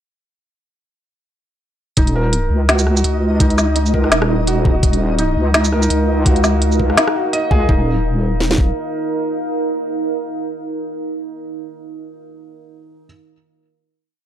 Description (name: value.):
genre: half-time drum and bass.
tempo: 168 BPM.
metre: 4/4.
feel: swing 56% on 16ths, half-time.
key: unclear.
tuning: A4 = 444 Hz.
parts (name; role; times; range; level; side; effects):
felt-muted upright piano; arpeggios; 2.0-7.9 s; Eb4 to Eb5; -23 LUFS; right 2 dB; tape echo.
deep soft wobble bass; bass; 2.0-8.7 s; Eb1 to Db2; -16 LUFS; equal; chorus.
organic electronic drum kit; drums; 2.0-7.4 s; hi-hat, rim click, shaker, snare drum; -18 LUFS; equal; small room ambience.
trap drum kit; drums; 2.0-8.7 s; kick drum, snare drum; -15 LUFS; equal; small room ambience.
flickering grainy texture; texture; 2.6-7.7 s; Eb4 to Eb5; -25 LUFS; equal; built-in reverb.
deep dark ambient pad; sustained chords; 5.9-11.3 s; Eb4 to F5; -23 LUFS; right 2 dB; chorus, built-in reverb, sidechain pumping.
room: little or no reverb.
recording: dry, gritty hardware recording.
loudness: -14 LUFS.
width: side -10 dB against mid.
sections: 2.0-7.7 drop; 7.7-10.5 final chord.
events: drop 2.0-7.7.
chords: 2.0 Ebm; 7.7 Eb5.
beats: | 1.97 2.33 2.69 3.05 | 3.40 3.76 4.12 4.47 | 4.83 5.19 5.55 5.90 | 6.26 6.62 6.97 7.33 | 7.69 8.05 8.40 8.76 | 9.12 9.47 9.83 10.19.